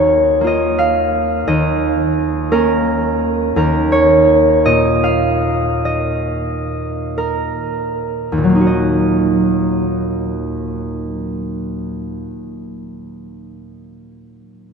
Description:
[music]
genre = classical, solo harp piece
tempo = 37-59 BPM (dotted quarters)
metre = 6/8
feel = rubato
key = Eb minor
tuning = A4 = 439 Hz
[part]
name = concert harp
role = solo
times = 0.0-12.3 s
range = Eb2 to F5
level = -14 LUFS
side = right 1 dB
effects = none
[sound]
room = wet cathedral reverb, RT60 5.8 s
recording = in a vast, echoing space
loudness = -14 LUFS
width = side -6 dB against mid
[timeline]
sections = 0.0-8.7 A section; 8.7-14.2 B section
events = slowing down 2.5-8.7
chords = 0.0 Ebmadd9; 1.5 Db69/Eb; 3.6 Eb5; 8.7 Ebm

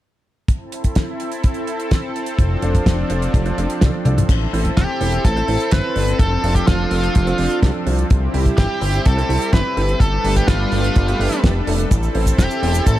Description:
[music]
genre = italo disco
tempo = 126 BPM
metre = 4/4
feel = straight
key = A minor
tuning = A4 = 445 Hz
[part]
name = lush unison pad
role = sustained chords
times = 0.5-13.0 s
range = F3 to B4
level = -24 LUFS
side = equal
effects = chorus
[part]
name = damped 70s drum kit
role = drums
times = 0.5-13.0 s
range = cabasa, crash cymbal, hi-hat, snare drum, toms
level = -24 LUFS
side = equal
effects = none
[part]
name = kick drum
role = drums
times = 0.5-13.0 s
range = none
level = -16 LUFS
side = equal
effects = none
[part]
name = fat analog bass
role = bass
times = 2.4-13.0 s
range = E1 to C2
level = -20 LUFS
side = equal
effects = tube saturation
[part]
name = warm grand piano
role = stabs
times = 2.6-13.0 s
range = G3 to D5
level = -26 LUFS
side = right 2 dB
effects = tape echo
[part]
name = biting lead guitar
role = melody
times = 4.8-13.0 s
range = F4 to B4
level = -23 LUFS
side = equal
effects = overdrive, tape echo
[sound]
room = little or no reverb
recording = dry, close 1970s-style studio recording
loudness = -15 LUFS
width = side -14 dB against mid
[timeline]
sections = 0.5-4.3 A section; 4.3-13.0 B section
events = drum fill 3.9-4.3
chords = 0.5 Am; 2.4 F6; 4.3 Am; 6.2 F6; 8.1 C; 10.0 Gadd9; 11.9 Am

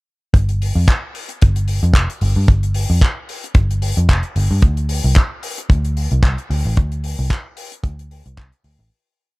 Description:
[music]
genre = nu-disco, nu disco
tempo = 112 BPM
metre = 4/4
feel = swing 55% on 16ths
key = unclear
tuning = A4 = 438 Hz
[part]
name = vintage muted picked electric bass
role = bass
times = 0.3-8.9 s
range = F1 to G2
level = -17 LUFS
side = equal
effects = tube saturation
[part]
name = damped 70s drum kit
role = drums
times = 0.3-8.8 s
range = handclaps, hi-hat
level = -26 LUFS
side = left 1 dB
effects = none
[part]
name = kick drum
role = drums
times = 0.3-8.5 s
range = none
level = -12 LUFS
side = equal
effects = none
[sound]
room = little or no reverb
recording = dark, warm production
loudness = -14 LUFS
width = side -24 dB against mid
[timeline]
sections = 0.3-8.9 groove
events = fade-out 6.1-8.9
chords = none

